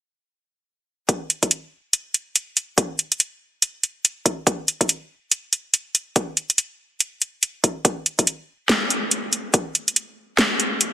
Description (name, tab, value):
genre	deep dubstep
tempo	142 BPM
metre	4/4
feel	swing 61% on 16ths, half-time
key	none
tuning	none
part	electronic kick drum	drums	1.1-9.6 s	none	-22 LUFS	equal	overdrive, high-pass filter on kick, high-pass filter on room
part	garage drum kit	drums	1.1-10.9 s	hi-hat, snare drum	-17 LUFS	equal	none
room	moderate lush hall reverb, RT60 2.1 s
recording	dense, heavily limited modern master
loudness	-20 LUFS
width	side -12 dB against mid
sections	1.1-10.9 A section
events	none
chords	none